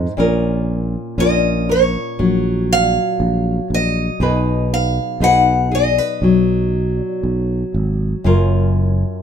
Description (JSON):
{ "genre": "folk", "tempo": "60 BPM", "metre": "4/4", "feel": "straight", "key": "F# major", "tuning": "A4 = 440 Hz", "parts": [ { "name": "nylon-string guitar", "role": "accompaniment", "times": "0.0-9.2 s", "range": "F#2 to B4", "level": "-19 LUFS", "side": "left 2 dB", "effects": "none" }, { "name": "sustaining fretless electric bass", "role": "bass", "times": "0.0-9.0 s", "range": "F#1 to B1", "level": "-18 LUFS", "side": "right 1 dB", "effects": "none" }, { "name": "picked acoustic archtop guitar", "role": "melody", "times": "1.2-7.7 s", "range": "C#5 to F#5", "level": "-18 LUFS", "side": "left 1 dB", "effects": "none" } ], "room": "light reverb", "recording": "minimal, uncompressed stereo recording", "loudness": "-14 LUFS", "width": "side -8 dB against mid", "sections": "0.0-9.2 A section", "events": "none", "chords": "0.2 F#maj7/A#; 4.2 B6; 8.3 F#maj7" }